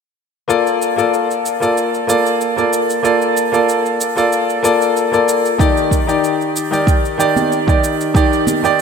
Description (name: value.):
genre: sunset chillout.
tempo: 94 BPM.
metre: 4/4.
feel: straight.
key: Bb major.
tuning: A4 = 440 Hz.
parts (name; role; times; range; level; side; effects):
clear grand piano; accompaniment; 0.5-8.8 s; Eb3 to D5; -14 LUFS; moving between left 6 dB and right 3 dB; auto-pan, digital delay.
shaker; drums; 0.5-8.8 s; none; -27 LUFS; right 3 dB; none.
electronic kick drum; drums; 5.6-8.3 s; none; -15 LUFS; right 1 dB; none.
congas; percussion; 7.4-8.6 s; none; -23 LUFS; right 3 dB; none.
room: wet lush hall reverb, RT60 2.6 s.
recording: bright 1980s-style digital production.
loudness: -13 LUFS.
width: side -6 dB against mid.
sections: 0.5-8.8 A section.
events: none.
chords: 0.5 Bbmaj7; 5.6 Ebmaj7.